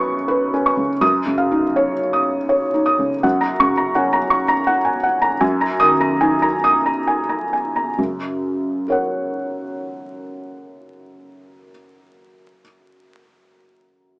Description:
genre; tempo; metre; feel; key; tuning
neoclassical minimalist piano; 65-84 BPM; 3/4; rubato; F# major; A4 = 440 Hz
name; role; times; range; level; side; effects
felt-muted upright piano; solo; 0.0-14.2 s; F#2 to D#6; -16 LUFS; equal; none
room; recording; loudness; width
moderate studio reverb, RT60 0.5 s; vinyl crackle, small speaker sound; -16 LUFS; side -25 dB against mid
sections
0.0-3.2 A section; 3.2-8.0 B section; 8.0-13.4 C section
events
slowing down 2.1-8.0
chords
0.0 Badd9/F#; 1.0 C#add9/F#; 3.2 F#; 5.4 G#sus2/F#; 8.0 F#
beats
0.28 | 1.01 1.76 2.50 | 3.23 3.96 4.68 | 5.42 6.21 7.06 | 7.97 8.88 9.78 | 10.69 11.60 12.49

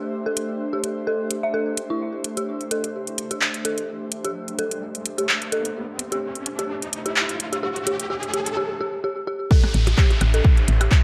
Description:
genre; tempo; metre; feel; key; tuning
minimal techno; 128 BPM; 4/4; swing 55% on 16ths; A minor; A4 = 441 Hz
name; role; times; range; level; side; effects
airy breathy pad; texture; 0.0-11.0 s; A3 to E5; -34 LUFS; equal; chorus, sidechain pumping
dark detuned synth bell; riff; 0.3-10.8 s; E4 to E5; -30 LUFS; equal; chorus, sidechain pumping, tape echo
house drum kit; drums; 0.4-11.0 s; handclaps, hi-hat; -26 LUFS; equal; high-pass filter on hats, high-pass filter on snare
riser and downlifter; sound effects; 3.7-11.0 s; none; -34 LUFS; equal; none
electronic kick drum; drums; 9.5-11.0 s; none; -18 LUFS; equal; none
percussion blips; percussion; 9.6-10.9 s; none; -32 LUFS; equal; delay
woody FM bass; bass; 9.7-10.9 s; A1; -20 LUFS; equal; sidechain pumping
room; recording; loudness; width
light reverb, digital ambience; none; -23 LUFS; mono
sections
0.0-9.5 A section; 9.5-11.0 B section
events
build-up 0.0-9.5; riser 3.7-8.6; drop 9.5-11.0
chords
0.0 Am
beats
| 0.13 0.60 1.07 1.54 | 2.01 2.48 2.95 3.41 | 3.88 4.35 4.82 5.29 | 5.76 6.23 6.70 7.16 | 7.63 8.10 8.57 9.04 | 9.51 9.98 10.45 10.91

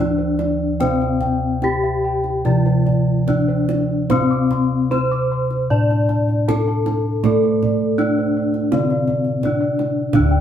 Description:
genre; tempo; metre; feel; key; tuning
Javanese gamelan; 73-86 BPM; 4/4; straight; D slendro; A4 = 439 Hz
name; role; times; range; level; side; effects
gamelan-type bronze metallophone; melody; 0.0-10.4 s; C4-25c to D5; -21 LUFS; left 3 dB; none
gamelan-type bronze metallophone; accompaniment; 0.0-10.4 s; C3-25c to D4; -23 LUFS; right 2 dB; none
gamelan-type bossed gongs; arpeggios; 0.0-10.4 s; C5-25c to D6; -25 LUFS; left 1 dB; none
gamelan-type bossed gongs; bass; 0.0-10.4 s; D2 to C5-25c; -21 LUFS; equal; none
kendang; percussion; 0.4-10.3 s; none; -27 LUFS; right 5 dB; none
gamelan-type bronze metallophone; arpeggios; 10.1-10.4 s; D5; -33 LUFS; right 2 dB; none
room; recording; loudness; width
moderate studio reverb, RT60 0.7 s; band playing live in one room; -16 LUFS; side -9 dB against mid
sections
0.0-10.1 A section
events
none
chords
none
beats
| 0.81 1.63 2.45 3.27 | 4.10 4.91 5.71 6.48 | 7.25 7.99 8.72 9.44 | 10.14

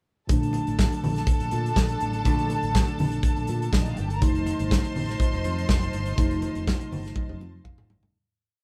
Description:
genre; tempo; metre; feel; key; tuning
disco; 122 BPM; 4/4; straight; Bb major; A4 = 444 Hz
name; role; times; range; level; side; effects
warm symphonic violin section; second line; 0.3-7.9 s; D4 to C6; -35 LUFS; equal; none
mellow tine electric piano; accompaniment; 0.3-8.2 s; Bb2 to F5; -33 LUFS; equal; none
clear studio string section; sustained chords; 0.3-8.1 s; D4 to A5; -41 LUFS; equal; none
fingered electric bass; bass; 0.3-8.1 s; F1 to Bb2; -32 LUFS; equal; none
modern studio drum kit; drums; 0.3-8.1 s; handclaps, hi-hat, kick drum, snare drum, toms; -27 LUFS; equal; none
congas; percussion; 0.5-8.0 s; none; -36 LUFS; equal; none
room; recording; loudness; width
wet studio ambience, RT60 0.5 s; band playing live in one room; -25 LUFS; mono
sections
0.3-8.1 verse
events
fade-out 6.2-8.1; drum fill 7.2-8.1; tine electric piano fill 7.4-8.1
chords
0.3 Bbmaj7; 4.2 F7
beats
| 0.29 0.78 1.27 1.76 | 2.25 2.74 3.23 3.72 | 4.21 4.71 5.20 5.69 | 6.18 6.67 7.16 7.65

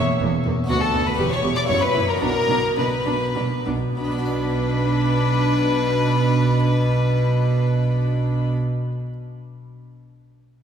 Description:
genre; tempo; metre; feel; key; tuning
classical, baroque-style concerto movement with solo episodes; 94-126 BPM; 3/4; straight; B minor; A4 = 440 Hz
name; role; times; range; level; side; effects
harpsichord; accompaniment; 0.0-9.1 s; D2 to D5; -31 LUFS; left 1 dB; none
warm chamber viola section; accompaniment; 0.0-8.5 s; A#3 to G4; -27 LUFS; equal; none
rich chamber double bass section; bass; 0.0-8.5 s; E1 to D2; -23 LUFS; right 2 dB; none
warm chamber cello section; bass; 0.0-8.5 s; D2 to B2; -27 LUFS; right 2 dB; none
warm chamber violin section; melody; 0.7-8.5 s; F#5 to D6; -30 LUFS; left 4 dB; none
warm violin; melody; 0.7-8.5 s; F#4 to D5; -26 LUFS; left 2 dB; none
rich chamber violin section; second line; 0.7-8.5 s; F#4 to D5; -28 LUFS; left 2 dB; none
room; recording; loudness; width
wet church reverb, RT60 3.0 s; recorded in a church or concert hall; -18 LUFS; side -8 dB against mid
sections
0.0-4.0 A section; 4.0-7.8 B section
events
slowing down 0.0-4.0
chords
0.0 F#7/E; 0.7 Bm/D; 1.2 C#dim/E; 1.7 F#7; 2.2 Bm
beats
0.21 | 0.69 1.19 1.69 | 2.22 2.78 3.36 | 3.98 4.62 5.25 | 5.88 6.51 7.15

